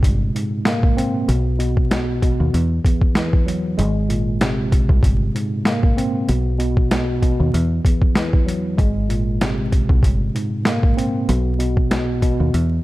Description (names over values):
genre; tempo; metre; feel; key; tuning
hip hop, boom-bap hip-hop; 96 BPM; 4/4; swing 55% on 16ths; unclear; A4 = 440 Hz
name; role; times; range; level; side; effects
tine electric piano; accompaniment; 0.0-12.8 s; E2 to C4; -21 LUFS; equal; medium stereo tremolo, cassette tape, high-pass filter, low-pass filter
deep dub fingered electric bass; bass; 0.0-12.8 s; G1 to E2; -20 LUFS; equal; none
boom bap sampler-style drum kit; drums; 0.0-12.7 s; hi-hat, kick drum, snare drum; -18 LUFS; equal; none
room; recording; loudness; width
digital ambience; vinyl crackle; -16 LUFS; side -18 dB against mid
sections
0.0-12.8 A section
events
kick muted 3.8-4.4, 12.5-12.8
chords
0.0 Abmaj9; 1.3 N.C.; 2.5 Esus2; 3.8 Abadd9; 6.3 N.C.; 7.5 Esus2; 8.8 Abadd9; 11.3 N.C.